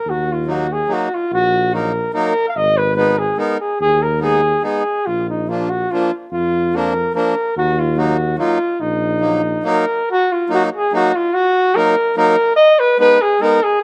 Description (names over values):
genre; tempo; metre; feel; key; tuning
alpine folk, alpine dance band; 144 BPM; 3/4; straight; Eb harmonic minor; A4 = 436 Hz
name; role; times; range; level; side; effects
mellow flugelhorn; melody; 0.0-13.8 s; Eb4 to F5; -18 LUFS; equal; slapback echo
mellow tuba; bass; 0.1-9.6 s; Ab1 to F2; -25 LUFS; equal; none
accordion; accompaniment; 0.5-13.6 s; F3 to Eb4; -22 LUFS; equal; slapback echo
room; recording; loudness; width
little or no reverb; recorded outdoors, with no room sound; -16 LUFS; mono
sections
0.1-10.1 A section; 10.1-13.8 A section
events
none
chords
0.1 Ebm; 2.6 Abm; 5.1 Bb; 7.6 Ebm; 12.6 Abm